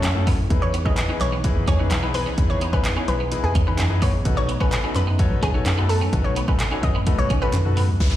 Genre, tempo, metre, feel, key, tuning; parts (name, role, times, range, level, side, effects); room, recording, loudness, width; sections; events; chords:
dance-pop; 128 BPM; 4/4; straight; A4 = 440 Hz
analog pluck; melody; 0.0-7.6 s; G#4 to D#5; -29 LUFS; left 1 dB; chorus, sidechain pumping, tape echo
clear concert grand piano; accompaniment; 0.0-8.2 s; A3 to C#5; -29 LUFS; left 6 dB; sidechain pumping
sweeping resonant pad; sustained chords; 0.0-8.2 s; C#3 to A4; -32 LUFS; equal; chorus, sidechain pumping
organ-like FM bass; bass; 0.0-8.2 s; B1 to F#2; -22 LUFS; equal; sidechain pumping
punchy analog drum machine; drums; 0.0-8.1 s; crash cymbal, handclaps, hi-hat, kick drum, toms; -22 LUFS; equal
group handclap; percussion; 0.0-7.6 s; -37 LUFS; right 4 dB
clean electric guitar; riff; 0.3-8.2 s; B3 to C#4; -32 LUFS; right 3 dB; ensemble chorus
downlifter; sound effects; 8.0-8.2 s; -28 LUFS; equal
little or no reverb; played on a big sound system in a bare room, stone room reverb; -18 LUFS; side -13 dB against mid
0.0-8.0 A section
drop 0.0-8.0; drum fill 7.5-8.0
0.0 F#m7; 0.5 Emaj7; 4.3 B7